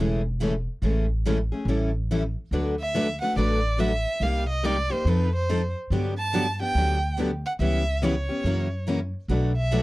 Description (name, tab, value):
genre	acoustic string swing (jazz manouche)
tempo	142 BPM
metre	4/4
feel	swing 63% on 8ths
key	D major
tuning	A4 = 440 Hz
part	picked steel-string acoustic guitar	accompaniment	0.0-9.8 s	B2 to B4	-27 LUFS	left 2 dB	none
part	picked steel-string acoustic guitar	accompaniment	0.0-9.8 s	B2 to B4	-31 LUFS	right 5 dB	none
part	upright bass	bass	0.0-9.8 s	E1 to G2	-26 LUFS	equal	none
part	warm violin	melody	2.8-9.8 s	B4 to A5	-28 LUFS	right 2 dB	none
room	little or no reverb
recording	dry, close 1970s-style studio recording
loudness	-23 LUFS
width	side -19 dB against mid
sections	0.0-2.5 A section; 2.5-9.8 B section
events	none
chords	0.0 Amaj7; 1.7 A7; 2.5 D69; 4.2 Cm7; 5.1 F7; 5.9 Gmaj7; 7.6 C#m7b5; 8.4 F#7; 9.3 Bm7